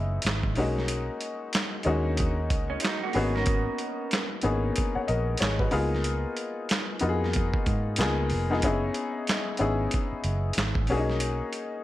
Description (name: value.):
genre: R&B, neo-soul.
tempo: 93 BPM.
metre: 4/4.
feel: swing 61% on 16ths.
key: unclear.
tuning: A4 = 442 Hz.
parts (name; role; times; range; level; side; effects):
warm upright piano; accompaniment; 0.0-11.8 s; G#3 to F#5; -29 LUFS; left 3 dB; none.
vintage muted fingered electric bass; bass; 0.0-11.4 s; E#1 to G#2; -29 LUFS; right 1 dB; none.
dusty soul sampler-style drum kit; drums; 0.2-11.7 s; handclaps, hi-hat, kick drum, snare drum; -29 LUFS; right 1 dB; overdrive.
electric guitar through a small old amp; second line; 2.7-4.3 s; F#3 to A#4; -32 LUFS; right 6 dB; none.
room: little or no reverb.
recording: none.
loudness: -25 LUFS.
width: side -15 dB against mid.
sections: 0.0-11.8 A section.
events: none.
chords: 0.0 F#9sus4; 0.6 Bmaj9; 3.1 G#m9; 5.7 C#9; 8.6 F#9sus4; 10.9 Bmaj9.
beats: 0.24 | 0.89 1.53 2.18 2.82 | 3.47 4.11 4.76 5.41 | 6.05 6.70 7.34 7.99 | 8.63 9.28 9.92 10.57 | 11.21.